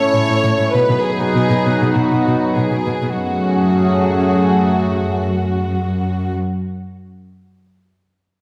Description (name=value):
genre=cinematic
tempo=99 BPM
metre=4/4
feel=straight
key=F# minor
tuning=A4 = 441 Hz
part: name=warm symphonic violin section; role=melody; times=0.0-6.3 s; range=F#4 to C#5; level=-23 LUFS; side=equal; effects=none
part: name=chorused pulse-width pad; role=sustained chords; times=0.0-6.3 s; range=F#3 to B4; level=-20 LUFS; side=equal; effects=none
part: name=rich symphonic cello section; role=bass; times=0.1-6.4 s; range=F#2 to B2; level=-22 LUFS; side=equal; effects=none
room=moderate scoring stage reverb, RT60 1.6 s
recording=none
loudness=-17 LUFS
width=mono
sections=0.0-3.2 A section; 3.2-5.6 B section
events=none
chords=0.0 A; 0.7 B; 3.2 F#madd9